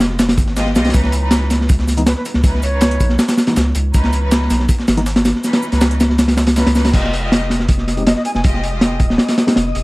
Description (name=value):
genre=drum and bass, jungle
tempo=160 BPM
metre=4/4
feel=straight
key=unclear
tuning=A4 = 440 Hz
part: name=soft dub sub bass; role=bass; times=0.0-9.8 s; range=Eb1 to Db2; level=-18 LUFS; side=equal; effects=none
part: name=breakbeat sampler-style drum kit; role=drums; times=0.0-6.8 s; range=hi-hat, shaker, snare drum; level=-29 LUFS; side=equal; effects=high-pass filter on hats, high-pass filter on snare, high-pass filter on perc
part: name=crunchy breakbeat drum kit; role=drums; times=0.0-9.8 s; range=crash cymbal, hi-hat, kick drum, snare drum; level=-14 LUFS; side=equal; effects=none
part: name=rich studio string section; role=sustained chords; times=0.6-8.9 s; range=Fb3 to Eb5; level=-25 LUFS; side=equal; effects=none
part: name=mellow tine electric piano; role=stabs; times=2.0-5.0, 8.0-9.5 s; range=Fb3 to G4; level=-24 LUFS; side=left 1 dB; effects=medium tremolo, dub echo
part: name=concert flute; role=melody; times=2.1-3.2, 8.1-8.4 s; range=Cb5 to Ab5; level=-26 LUFS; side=right 1 dB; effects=vintage 12-bit sampler grit, dub echo
part: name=wind-like tuned noise texture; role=texture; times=7.5-9.8 s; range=Eb5 to Eb6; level=-30 LUFS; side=left 4 dB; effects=built-in reverb
room=small room ambience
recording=dry, gritty hardware recording, vinyl crackle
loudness=-13 LUFS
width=side -22 dB against mid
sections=0.0-6.9 A section; 6.9-9.8 A section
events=drop 0.0-6.9, 6.9-9.8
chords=0.0 Fm9; 0.9 Dbm9; 6.9 Fm9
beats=0.19 0.57 | 0.94 1.32 1.69 2.07 | 2.44 2.82 3.19 3.57 | 3.94 4.32 4.69 5.07 | 5.44 5.82 6.19 6.57 | 6.94 7.32 7.69 8.07 | 8.44 8.82 9.19 9.57